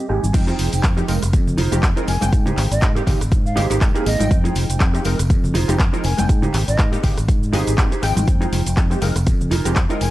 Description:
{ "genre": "filtered disco house", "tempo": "121 BPM", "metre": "4/4", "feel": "swing 56% on 16ths", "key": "F minor", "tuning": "A4 = 440 Hz", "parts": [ { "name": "mellow electric guitar", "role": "riff", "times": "0.0-10.0 s", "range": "Eb4 to Ab5", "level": "-26 LUFS", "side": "right 4 dB", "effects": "sidechain pumping, low-pass filter" }, { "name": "funky polysynth comp", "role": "accompaniment", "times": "0.1-10.1 s", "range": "F3 to G5", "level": "-25 LUFS", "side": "equal", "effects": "chorus, phaser, sidechain pumping, low-pass filter" }, { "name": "fingered electric bass", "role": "bass", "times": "0.1-10.1 s", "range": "F1 to Ab2", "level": "-20 LUFS", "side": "equal", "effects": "sidechain pumping, low-pass filter" }, { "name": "tambourine and congas", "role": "percussion", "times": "0.1-10.1 s", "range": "none", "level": "-29 LUFS", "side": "right 1 dB", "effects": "sidechain pumping on perc, low-pass filter on perc" }, { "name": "house drum kit", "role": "drums", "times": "0.2-10.1 s", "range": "crash cymbal, handclaps, hi-hat, rim click, shaker", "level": "-26 LUFS", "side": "equal", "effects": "sidechain pumping on perc, sidechain pumping on hats, sidechain pumping on cymbals" }, { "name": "electronic kick drum", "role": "drums", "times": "0.3-9.9 s", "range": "none", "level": "-18 LUFS", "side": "equal", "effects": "none" }, { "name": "mellow hollow jazz flute", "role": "melody", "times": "2.1-6.9, 10.0-10.1 s", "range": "Eb5 to Ab5", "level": "-27 LUFS", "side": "equal", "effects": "sidechain pumping, low-pass filter" } ], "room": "digital ambience", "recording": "dry, gritty hardware recording, lossy compression artefacts", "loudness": "-16 LUFS", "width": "side -16 dB against mid", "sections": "0.3-10.1 A section", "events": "clean electric guitar fill 0.0-0.3; drop 0.3-10.1", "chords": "0.3 Fm7; 2.3 Abmaj7; 4.3 Fm7; 6.3 Abmaj7; 8.3 Fm7" }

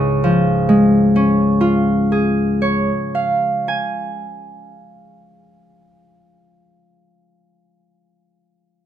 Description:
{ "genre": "classical, solo harp piece", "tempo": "39 BPM (dotted quarters)", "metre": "6/8", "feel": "rubato", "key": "Db major", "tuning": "A4 = 440 Hz", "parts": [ { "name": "Celtic harp", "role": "solo", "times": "0.0-6.6 s", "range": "Db2 to Ab5", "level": "-14 LUFS", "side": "equal", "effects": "none" } ], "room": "light reverb", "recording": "close, detailed microphones", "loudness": "-14 LUFS", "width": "side -10 dB against mid", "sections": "0.0-5.1 A section", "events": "none", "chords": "0.0 Db" }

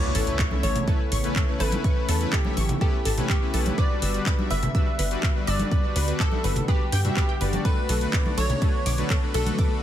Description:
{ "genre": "progressive house", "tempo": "124 BPM", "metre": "4/4", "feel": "straight", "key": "unclear", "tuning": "A4 = 441 Hz", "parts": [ { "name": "plucky unison lead", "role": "melody", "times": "0.0-9.8 s", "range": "G4 to E5", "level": "-32 LUFS", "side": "equal", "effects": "digital delay" }, { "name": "soft synth bell", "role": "second line", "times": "0.0-9.8 s", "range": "G5 to E6", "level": "-37 LUFS", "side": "equal", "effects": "chorus, sidechain pumping, digital delay" }, { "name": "warm analog pad", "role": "sustained chords", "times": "0.0-9.8 s", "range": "C#3 to E4", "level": "-34 LUFS", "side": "right 2 dB", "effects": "chorus, sidechain pumping" }, { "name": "soft supersaw", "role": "stabs", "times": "0.0-9.8 s", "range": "G3 to E5", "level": "-31 LUFS", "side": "left 3 dB", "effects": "sidechain pumping, digital delay" }, { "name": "impact", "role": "sound effects", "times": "0.0-1.8 s", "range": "none", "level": "-32 LUFS", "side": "equal", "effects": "none" }, { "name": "house drum kit", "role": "drums", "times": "0.1-9.7 s", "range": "handclaps, hi-hat, ride cymbal", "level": "-32 LUFS", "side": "left 1 dB", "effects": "none" }, { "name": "wide unison pluck", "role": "arpeggios", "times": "0.2-9.6 s", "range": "A4 to G6", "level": "-35 LUFS", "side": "equal", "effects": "sidechain pumping, digital delay" }, { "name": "tight sequencer bass", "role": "bass", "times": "0.2-9.5 s", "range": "G1 to G2", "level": "-25 LUFS", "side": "equal", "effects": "sidechain pumping" }, { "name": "electronic kick drum", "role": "drums", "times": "0.4-9.7 s", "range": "none", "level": "-24 LUFS", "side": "equal", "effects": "none" }, { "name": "congas", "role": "percussion", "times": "0.5-9.6 s", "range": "none", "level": "-31 LUFS", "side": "left 1 dB", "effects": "sidechain pumping on perc" } ], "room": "little or no reverb", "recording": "none", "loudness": "-21 LUFS", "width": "side -11 dB against mid", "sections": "0.0-9.8 A section", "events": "impact 0.0-1.8", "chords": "0.0 Aadd9; 3.8 Gmaj7; 7.7 Bm7" }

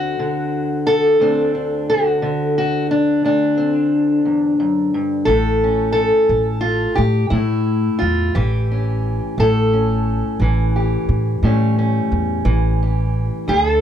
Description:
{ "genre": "acoustic country blues, solo or duo", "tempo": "59 BPM (dotted quarters)", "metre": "12/8", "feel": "straight", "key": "unclear", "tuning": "A4 = 440 Hz", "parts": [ { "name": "fingerpicked steel-string acoustic guitar", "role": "melody", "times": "0.0-13.8 s", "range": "D2 to A4", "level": "-16 LUFS", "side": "left 1 dB", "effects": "none" }, { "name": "upright bass", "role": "bass", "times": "5.3-13.8 s", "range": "A1 to A2", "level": "-19 LUFS", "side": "right 1 dB", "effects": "none" } ], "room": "light reverb", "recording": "dark, warm production", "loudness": "-15 LUFS", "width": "side -9 dB against mid", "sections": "0.0-13.8 A section", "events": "none", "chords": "0.0 D7; 5.3 A7" }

